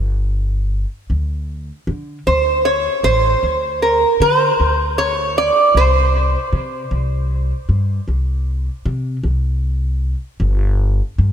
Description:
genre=acoustic country blues, solo or duo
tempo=52 BPM (dotted quarters)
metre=12/8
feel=straight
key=unclear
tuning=A4 = 440 Hz
part: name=upright bass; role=bass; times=0.0-11.3 s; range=G1 to D3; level=-18 LUFS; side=equal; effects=none
part: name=lap resonator guitar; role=melody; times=2.3-10.4 s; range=Bb4 to D5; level=-15 LUFS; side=right 2 dB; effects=analog chorus, diffuse ambient delay
room=moderate lush hall reverb, RT60 2.7 s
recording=dreamy mix soaked in reverb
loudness=-15 LUFS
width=side -9 dB against mid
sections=0.0-11.3 A section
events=none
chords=0.0 G5; 1.1 D5; 5.8 C5; 10.4 G5

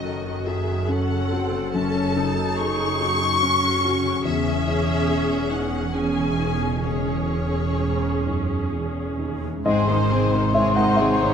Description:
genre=cinematic, emotional film score for orchestra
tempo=64-73 BPM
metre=3/4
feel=rubato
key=C# harmonic minor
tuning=A4 = 441 Hz
part: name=warm studio violin section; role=melody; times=0.0-11.3 s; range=B#4 to C#6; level=-27 LUFS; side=left 4 dB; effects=none
part: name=dark concert grand piano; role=accompaniment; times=0.0-11.3 s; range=E2 to F#5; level=-26 LUFS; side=left 2 dB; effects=none
part: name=warm studio viola section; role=accompaniment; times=0.0-11.3 s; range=D#3 to A4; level=-27 LUFS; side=right 2 dB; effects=none
part: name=concert harp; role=arpeggios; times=0.0-11.3 s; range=F#2 to A4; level=-31 LUFS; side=left 8 dB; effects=none
part: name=warm studio cello section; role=bass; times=0.0-11.3 s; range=D#2 to G#2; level=-30 LUFS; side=right 3 dB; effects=none
part: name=warm studio double bass section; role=bass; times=0.0-11.3 s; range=E1 to G#1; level=-28 LUFS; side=right 5 dB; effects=none
part: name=mellow hollow silver concert flute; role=second line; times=9.7-11.3 s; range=B#5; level=-25 LUFS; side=left 2 dB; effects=none
part: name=rich studio violin section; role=second line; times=9.7-11.3 s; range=B#3 to B#4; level=-29 LUFS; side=left 3 dB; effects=none
part: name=warm clarinet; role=second line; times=9.7-11.3 s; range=D#4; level=-29 LUFS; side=equal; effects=none
room=moderate scoring stage reverb, RT60 1.4 s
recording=none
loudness=-20 LUFS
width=side -7 dB against mid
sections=0.0-9.7 A section; 9.7-11.3 A section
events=none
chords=0.0 F#m; 4.2 C#madd9/E; 9.7 G#

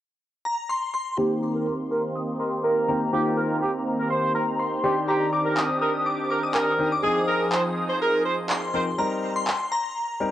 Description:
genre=dance-pop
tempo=123 BPM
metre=4/4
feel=straight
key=Eb major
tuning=A4 = 440 Hz
part: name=shimmering bell with halo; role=melody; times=0.5-10.3 s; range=Bb5 to Eb6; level=-28 LUFS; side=left 2 dB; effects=ensemble chorus, low-pass filter, cassette tape, tape echo
part: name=warm horn section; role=melody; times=1.2-8.8 s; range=G4 to C5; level=-26 LUFS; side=right 2 dB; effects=low-pass filter, cassette tape, tape echo
part: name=clear concert grand piano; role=accompaniment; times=1.2-10.3 s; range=Eb3 to Bb4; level=-28 LUFS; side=left 2 dB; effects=low-pass filter
part: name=filtered supersaw swell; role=sustained chords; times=1.2-9.0 s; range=Eb3 to Ab4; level=-28 LUFS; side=right 1 dB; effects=low-pass filter
part: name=electronic handclaps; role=drums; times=5.6-9.6 s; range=none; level=-28 LUFS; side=equal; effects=overdrive, cassette tape
room=moderate spring reverb, RT60 1.7 s, studio ambience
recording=home recording on cassette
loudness=-22 LUFS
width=side -12 dB against mid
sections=0.0-1.2 A section; 1.2-9.0 B section; 9.0-10.3 C section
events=filter sweep 1.2-9.0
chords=0.0 N.C.; 1.2 Eb6; 4.8 Cmadd9; 7.0 Ab6; 9.0 Eb6

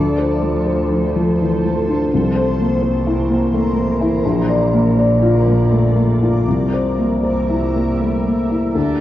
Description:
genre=neoclassical piano and strings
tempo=77-86 BPM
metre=3/4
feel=rubato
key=unclear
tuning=A4 = 440 Hz
part: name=warm cello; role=second line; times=0.0-9.0 s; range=D3 to D4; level=-34 LUFS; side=right 6 dB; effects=none
part: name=felt-muted upright piano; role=accompaniment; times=0.0-9.0 s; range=Bb1 to D5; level=-16 LUFS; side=left 2 dB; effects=none
part: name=granular cloud pad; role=sustained chords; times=0.0-8.8 s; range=E3 to E5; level=-23 LUFS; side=right 1 dB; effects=built-in reverb
part: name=bright double bass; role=bass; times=0.0-8.7 s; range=Bb1 to D2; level=-21 LUFS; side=right 1 dB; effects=none
room=moderate recital hall reverb, RT60 1.6 s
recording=worn, warbling old tape, cassette tape, warbly pitch drift, nothing above 7.7 kHz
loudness=-14 LUFS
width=side -13 dB against mid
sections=0.0-8.7 A section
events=none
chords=0.0 Dm7; 2.1 C7; 4.2 Bb; 6.5 C7

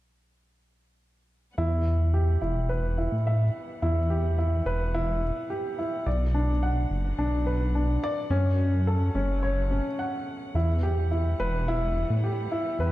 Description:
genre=piano and strings electronica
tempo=107 BPM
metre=4/4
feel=straight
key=E dorian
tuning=A4 = 440 Hz
part: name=warm string quartet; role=sustained chords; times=1.6-12.9 s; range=C#3 to F#5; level=-45 LUFS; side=right 1 dB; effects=none
part: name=warm baby grand piano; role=riff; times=1.6-12.9 s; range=C#4 to F#5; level=-29 LUFS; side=equal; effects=tape echo
part: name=dark detuned saw bass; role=bass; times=1.6-12.9 s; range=E1 to A2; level=-25 LUFS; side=equal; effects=none
room=light reverb, small room ambience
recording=dark, warm production, faint mains hum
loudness=-24 LUFS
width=side -16 dB against mid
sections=1.6-12.9 A section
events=fade-in on string quartet 1.6-12.9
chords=1.6 Emadd9; 6.1 Bm; 8.3 F#m; 10.6 Emadd9

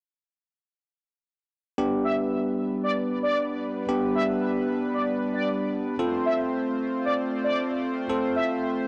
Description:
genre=pop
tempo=114 BPM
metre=4/4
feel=straight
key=G mixolydian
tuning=A4 = 440 Hz
part: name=bell-like tine electric piano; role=accompaniment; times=1.8-8.9 s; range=B3 to A4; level=-29 LUFS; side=equal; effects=none
part: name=chorused pulse-width pad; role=sustained chords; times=1.8-8.9 s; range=G3 to C5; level=-32 LUFS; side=equal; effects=none
part: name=analog synth brass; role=second line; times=2.0-8.4 s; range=D5 to E5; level=-32 LUFS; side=equal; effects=chorus, tape echo
room=light reverb, digital ambience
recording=dry, gritty hardware recording, transformer saturation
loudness=-26 LUFS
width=mono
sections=1.8-8.9 A section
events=none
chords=1.8 G; 6.0 F

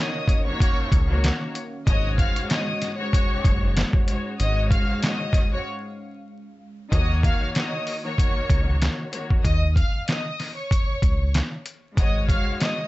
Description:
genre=hip hop, boom-bap hip-hop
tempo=95 BPM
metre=4/4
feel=swing 55% on 16ths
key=Eb minor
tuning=A4 = 440 Hz
part: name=warm studio violin section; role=melody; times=0.0-12.9 s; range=Db5 to F6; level=-30 LUFS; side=left 1 dB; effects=high-pass filter, low-pass filter
part: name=muted studio string section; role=accompaniment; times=0.0-12.9 s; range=Ab2 to Db5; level=-30 LUFS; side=left 2 dB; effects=cassette tape, high-pass filter, low-pass filter
part: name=dark analog pad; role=sustained chords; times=0.1-6.9 s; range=Eb3 to F5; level=-38 LUFS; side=right 2 dB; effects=chorus, high-pass filter, low-pass filter
part: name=trip hop sampler-style drum kit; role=drums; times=0.3-12.8 s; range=handclaps, hi-hat, kick drum, snare drum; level=-22 LUFS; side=equal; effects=none
part: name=warm trumpet section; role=stabs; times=0.6-3.5 s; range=Ab3 to Db5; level=-36 LUFS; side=right 1 dB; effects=high-pass filter, low-pass filter, digital delay
part: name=round analog bass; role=bass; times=0.9-12.4 s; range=Gb1 to Eb2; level=-22 LUFS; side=equal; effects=none
room=small room ambience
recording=vinyl crackle, nothing above 8.0 kHz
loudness=-20 LUFS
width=side -18 dB against mid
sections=0.0-6.9 A section; 6.9-12.9 B section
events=break 5.7-6.9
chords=0.0 Ebm7; 1.9 Ab7sus4; 6.9 Ebm7; 12.0 Ab7sus4

